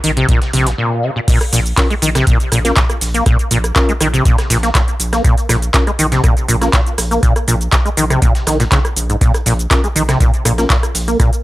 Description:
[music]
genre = acid house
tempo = 121 BPM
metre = 4/4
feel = straight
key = Bb minor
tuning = A4 = 440 Hz
[part]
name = deep acid bass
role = riff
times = 0.0-11.3 s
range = Ab2 to Bb3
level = -16 LUFS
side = equal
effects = overdrive, ensemble chorus, tape echo
[part]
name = round analog bass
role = bass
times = 0.0-11.2 s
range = Bb1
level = -19 LUFS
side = equal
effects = sidechain pumping
[part]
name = booming analog drum machine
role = drums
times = 0.0-11.4 s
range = crash cymbal, handclaps, hi-hat, rim click, shaker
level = -18 LUFS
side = equal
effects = none
[part]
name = breakbeat sampler-style drum kit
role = drums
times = 0.0-11.3 s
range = hi-hat, snare drum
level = -30 LUFS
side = equal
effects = none
[part]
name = electronic kick drum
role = drums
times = 0.3-11.3 s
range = none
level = -14 LUFS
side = equal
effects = none
[part]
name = bell-like tine electric piano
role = stabs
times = 1.8-6.7, 9.7-10.7 s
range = Db4 to Bb4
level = -23 LUFS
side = left 2 dB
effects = tape echo
[sound]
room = little or no reverb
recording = dry, gritty hardware recording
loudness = -11 LUFS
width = side -17 dB against mid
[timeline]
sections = 0.0-1.3 A section; 1.3-11.4 B section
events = break 0.8-1.3; drop 1.3-11.4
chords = none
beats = 0.29 0.78 | 1.28 1.77 2.27 2.77 | 3.26 3.76 4.25 4.75 | 5.25 5.74 6.24 6.73 | 7.23 7.72 8.22 8.72 | 9.21 9.71 10.20 10.70 | 11.20

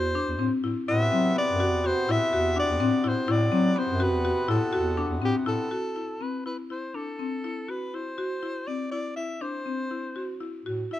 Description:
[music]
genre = contemporary instrumental, chamber music in an uneven meter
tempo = 245 BPM (eighths)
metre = 5/8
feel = straight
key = A dorian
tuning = A4 = 440 Hz
[part]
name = breathy soprano saxophone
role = melody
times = 0.0-11.0 s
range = G4 to E5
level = -29 LUFS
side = left 1 dB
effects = none
[part]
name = buzzing marimba with hard mallets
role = arpeggios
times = 0.0-11.0 s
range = B3 to F#4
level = -28 LUFS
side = left 2 dB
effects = none
[part]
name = dark bass clarinet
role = bass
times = 0.0-5.6, 10.7-10.9 s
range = E2 to F#3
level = -28 LUFS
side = equal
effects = none
[part]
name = hand-pumped harmonium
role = sustained chords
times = 0.9-5.7 s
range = C3 to F#4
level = -33 LUFS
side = left 2 dB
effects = none
[sound]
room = little or no reverb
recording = close, detailed microphones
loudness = -24 LUFS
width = side -13 dB against mid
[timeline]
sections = 0.0-5.7 A section; 5.7-11.0 B section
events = none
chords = 0.0 Am69; 5.7 Am6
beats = 0.15 0.39 0.64 | 0.88 1.13 1.37 1.61 1.85 | 2.09 2.33 2.57 2.81 3.05 | 3.29 3.53 3.77 4.01 4.26 | 4.50 4.74 4.98 5.23 5.48 | 5.72 5.97 6.22 6.47 6.71 | 6.96 7.21 7.45 7.70 7.95 | 8.19 8.44 8.68 8.93 9.17 | 9.42 9.66 9.91 10.16 10.41 | 10.66 10.91

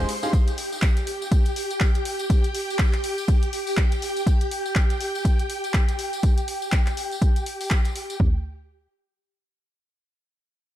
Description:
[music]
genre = piano house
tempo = 122 BPM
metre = 4/4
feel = swing 58% on 16ths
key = unclear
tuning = A4 = 440 Hz
[part]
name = string machine, violins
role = sustained chords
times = 0.0-8.2 s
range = G4 to C6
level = -29 LUFS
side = equal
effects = ensemble chorus, sidechain pumping
[part]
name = punchy analog drum machine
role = drums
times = 0.1-8.2 s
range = handclaps, hi-hat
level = -31 LUFS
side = left 1 dB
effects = overdrive
[part]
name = tambourine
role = percussion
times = 0.2-8.2 s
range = none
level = -39 LUFS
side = left 3 dB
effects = none
[part]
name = punchy analog drum machine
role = drums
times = 0.3-8.3 s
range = kick drum, toms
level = -20 LUFS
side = equal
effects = overdrive
[sound]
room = small room ambience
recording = dark, warm production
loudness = -21 LUFS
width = side -13 dB against mid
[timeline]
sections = 0.0-8.2 A section; 8.2-10.8 B section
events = none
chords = none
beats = | 0.33 0.82 1.31 1.81 | 2.30 2.79 3.28 3.77 | 4.27 4.76 5.25 5.74 | 6.23 6.72 7.22 7.71 | 8.20

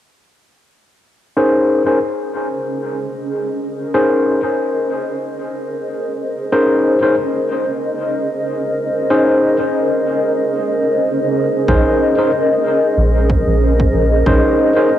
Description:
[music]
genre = ambient dub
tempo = 93 BPM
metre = 4/4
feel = swing 55% on 16ths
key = Bb minor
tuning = A4 = 440 Hz
[part]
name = granular cloud pad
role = sustained chords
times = 2.3-15.0 s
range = Db4 to Eb5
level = -18 LUFS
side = equal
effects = built-in reverb, cassette tape
[part]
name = overdriven tine electric piano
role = stabs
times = 1.4-14.9 s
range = Db4 to C5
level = -16 LUFS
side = left 1 dB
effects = wide subtle chorus, low-pass filter, cassette tape, dub echo
[part]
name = round analog bass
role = bass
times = 11.7-14.4 s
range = Bb1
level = -14 LUFS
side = equal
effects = none
[part]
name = electronic kick drum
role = drums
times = 11.7-14.4 s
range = none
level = -20 LUFS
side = equal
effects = overdrive
[sound]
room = moderate spring reverb, RT60 2.2 s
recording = home recording on cassette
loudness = -14 LUFS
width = side -11 dB against mid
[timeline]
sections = 1.4-15.0 A section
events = filter sweep on ambient pad 1.4-15.0; filter sweep on tine electric piano 1.4-15.0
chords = 1.4 Bbm11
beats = | 1.36 2.01 2.65 3.30 | 3.94 4.59 5.23 5.88 | 6.52 7.17 7.81 8.46 | 9.10 9.75 10.39 11.04 | 11.68 12.33 12.97 13.62 | 14.27 14.91

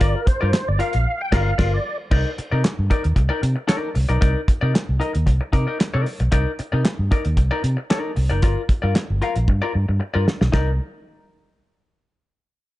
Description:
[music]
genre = funk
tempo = 114 BPM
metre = 4/4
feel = straight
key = C minor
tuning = A4 = 440 Hz
[part]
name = tonewheel organ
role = melody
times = 0.0-2.0 s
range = Bb4 to G5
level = -25 LUFS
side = right 1 dB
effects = overdrive, chorus vibrato, slow rotary speaker
[part]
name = semi-hollow electric guitar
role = accompaniment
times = 0.0-10.7 s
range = Eb4 to F5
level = -26 LUFS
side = left 4 dB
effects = none
[part]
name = vintage muted fingered electric bass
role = bass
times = 0.0-10.8 s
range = F#1 to C3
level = -20 LUFS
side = equal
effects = none
[part]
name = cloth-damped thuddy drum kit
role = drums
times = 0.0-10.7 s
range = crash cymbal, handclaps, hi-hat, kick drum, snare drum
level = -20 LUFS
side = equal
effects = none
[sound]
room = small room ambience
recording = dark, warm production, nothing above 10.4 kHz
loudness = -18 LUFS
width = side -16 dB against mid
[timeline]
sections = 0.0-2.1 A section; 2.1-10.5 B section; 10.5-12.6 C section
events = tonewheel organ solo 0.0-2.1; band accent 1.1-2.1; drum fill 9.5-10.5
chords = 0.0 Gm7; 2.1 Cm9; 8.4 Gm7; 10.5 Cm9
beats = | 0.01 0.54 1.06 1.59 | 2.11 2.64 3.17 3.69 | 4.22 4.74 5.27 5.80 | 6.32 6.85 7.38 7.90 | 8.43 8.96 9.48 10.01 | 10.54

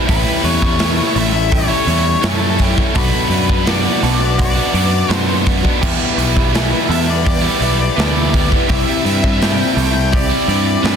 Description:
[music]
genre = rock, shoegaze and dream pop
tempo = 84 BPM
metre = 4/4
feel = straight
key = E minor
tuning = A4 = 440 Hz
[part]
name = string machine, full ensemble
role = sustained chords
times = 0.0-11.0 s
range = C4 to D6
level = -26 LUFS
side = equal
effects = ensemble chorus
[part]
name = twelve-string electric guitar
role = arpeggios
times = 0.0-11.0 s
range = F#4 to D5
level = -27 LUFS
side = right 11 dB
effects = lush chorus, tape echo
[part]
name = biting overdriven guitar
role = riff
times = 0.0-11.0 s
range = E2 to F#4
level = -21 LUFS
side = right 13 dB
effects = reverse reverb
[part]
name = overdriven electric guitar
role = riff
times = 0.0-11.0 s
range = E2 to F#4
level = -20 LUFS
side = left 12 dB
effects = lush chorus
[part]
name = octave-fuzz lead guitar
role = melody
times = 0.1-11.0 s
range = A4 to G5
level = -22 LUFS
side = left 2 dB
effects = distortion, tape echo
[part]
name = growling picked electric bass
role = bass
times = 0.1-11.0 s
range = A1 to G2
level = -18 LUFS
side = equal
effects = overdrive
[part]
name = big rock drum kit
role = drums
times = 0.1-11.0 s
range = crash cymbal, hi-hat, kick drum, snare drum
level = -18 LUFS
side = equal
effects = none
[sound]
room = light reverb, studio reverb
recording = dense, heavily limited modern master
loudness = -12 LUFS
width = side -7 dB against mid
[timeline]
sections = 0.0-11.0 A section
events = none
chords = 0.1 A7; 3.0 Bm7; 5.8 Em7; 8.7 Cmaj9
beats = | 0.09 0.81 1.52 2.24 | 2.96 3.67 4.39 5.11 | 5.83 6.54 7.26 7.98 | 8.69 9.41 10.13 10.84

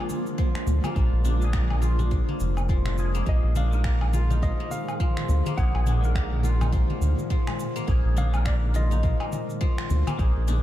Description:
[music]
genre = organic downtempo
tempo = 104 BPM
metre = 4/4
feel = swing 59% on 16ths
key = unclear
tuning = A4 = 440 Hz
[part]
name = clean electric guitar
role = accompaniment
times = 0.0-10.6 s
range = Eb3 to Bb4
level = -38 LUFS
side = left 1 dB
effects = ensemble chorus, sidechain pumping, diffuse ambient delay
[part]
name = granular cloud pad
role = sustained chords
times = 0.0-10.6 s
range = Bb2 to Ab4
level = -34 LUFS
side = right 1 dB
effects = built-in reverb, sidechain pumping
[part]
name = guzheng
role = arpeggios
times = 0.0-10.6 s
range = F3 to F4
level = -33 LUFS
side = left 4 dB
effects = diffuse ambient delay
[part]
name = electronic cabasa, finger snaps and woodblock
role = drums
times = 0.1-10.6 s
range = none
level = -38 LUFS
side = equal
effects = none
[part]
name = congas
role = percussion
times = 0.1-10.6 s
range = none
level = -35 LUFS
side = left 2 dB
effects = none
[part]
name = electronic kick drum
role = drums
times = 0.4-10.3 s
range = none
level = -25 LUFS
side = equal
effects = none
[part]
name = round analog bass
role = bass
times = 0.7-10.6 s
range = F1 to D2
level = -23 LUFS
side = equal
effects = sidechain pumping
[part]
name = clean lap steel guitar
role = melody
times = 3.3-10.6 s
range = D5 to Gb5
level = -37 LUFS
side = equal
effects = analog delay
[sound]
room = light reverb, digital ambience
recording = none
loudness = -22 LUFS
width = side -13 dB against mid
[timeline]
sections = 0.0-10.6 A section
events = none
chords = 0.0 Bb7; 3.3 Absus2/Bb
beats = 0.39 | 0.96 1.54 2.12 2.69 | 3.27 3.85 4.42 5.00 | 5.58 6.16 6.73 7.31 | 7.89 8.46 9.04 9.62 | 10.19

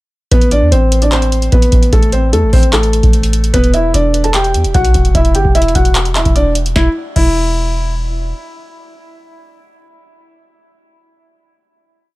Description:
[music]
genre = hip hop, trap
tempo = 149 BPM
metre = 4/4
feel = half-time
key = E minor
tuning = A4 = 440 Hz
[part]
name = felt-muted upright piano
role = melody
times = 0.3-7.9 s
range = A3 to A5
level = -15 LUFS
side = equal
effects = tape echo
[part]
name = warm 808-style bass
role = bass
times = 0.3-8.3 s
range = E1 to E2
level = -14 LUFS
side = equal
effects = none
[part]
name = booming analog drum machine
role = drums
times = 0.3-7.3 s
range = crash cymbal, handclaps, hi-hat, kick drum, snare drum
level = -14 LUFS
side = equal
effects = none
[sound]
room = little or no reverb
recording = none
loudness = -10 LUFS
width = side -19 dB against mid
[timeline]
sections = 0.3-6.8 hook; 6.8-10.0 final note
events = none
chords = 0.3 Amadd9; 3.5 Em7; 6.8 N.C.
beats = | 0.32 0.72 1.12 1.52 | 1.93 2.33 2.73 3.13 | 3.54 3.94 4.34 4.74 | 5.15 5.55 5.95 6.36 | 6.76 7.16 7.56 7.97

